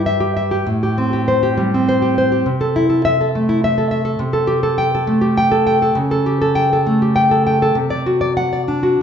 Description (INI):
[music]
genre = romantic piece for solo classical guitar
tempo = 101 BPM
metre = 3/4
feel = rubato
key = unclear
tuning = A4 = 438 Hz
[part]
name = nylon-string guitar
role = solo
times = 0.0-9.0 s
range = G2 to G5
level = -14 LUFS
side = equal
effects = none
[sound]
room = wet recital hall reverb, RT60 1.3 s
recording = recorded in a church or concert hall, nothing above 7.8 kHz, faint mains hum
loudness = -14 LUFS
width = side -8 dB against mid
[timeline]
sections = 0.0-9.0 A section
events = none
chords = 0.0 Em/G; 0.7 Am7; 2.5 Am/C; 4.2 Am7/C; 6.0 A7/C#; 7.8 D7/C